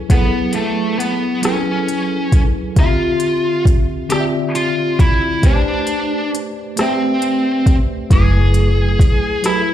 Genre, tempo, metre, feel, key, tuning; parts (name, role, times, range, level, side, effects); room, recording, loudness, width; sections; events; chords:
slow six-eight R&B; 45 BPM (dotted quarters); 6/8; straight; A4 = 440 Hz
mellow tine electric piano; accompaniment; 0.0-9.7 s; D3 to E5; -21 LUFS; equal; medium stereo tremolo
high-gain lead guitar; melody; 0.1-9.7 s; A3 to G#4; -19 LUFS; equal; distortion
smooth R&B drum kit; drums; 0.1-9.7 s; hi-hat, kick drum, rim click; -14 LUFS; equal; overdrive
vintage muted fingered electric bass; bass; 8.1-9.0 s; F#1; -13 LUFS; equal
digital ambience; played on a big sound system in a bare room, stone room reverb; -14 LUFS; side -11 dB against mid
0.0-9.7 A section
0.0 F#m11; 2.8 Dm11; 5.4 Am11; 8.1 F#m11